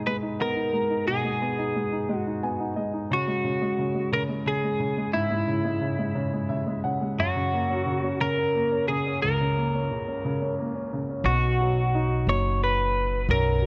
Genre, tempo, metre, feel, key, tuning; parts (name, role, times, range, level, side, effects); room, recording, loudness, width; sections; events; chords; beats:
pop; 59 BPM (dotted quarters); 6/8; straight; B major; A4 = 441 Hz
clear concert grand piano; accompaniment; 0.0-13.7 s; C#2 to G#5; -30 LUFS; equal
twelve-string electric guitar; melody; 0.1-13.7 s; E4 to C#5; -29 LUFS; equal; subtle chorus
upright bass; bass; 11.2-13.7 s; F#1 to B1; -27 LUFS; equal
light reverb, small room ambience; worn, warbling old tape, cassette tape, warbly pitch drift; -26 LUFS; mono
0.0-11.3 A section; 11.3-13.7 B section
grand piano fill 2.1-3.1, 6.2-7.2
0.0 G#m/B; 3.1 C#m; 7.2 F#; 11.3 B
0.05 | 1.07 2.08 | 3.10 4.12 | 5.14 6.16 | 7.17 8.19 | 9.21 10.23 | 11.25 12.27 | 13.29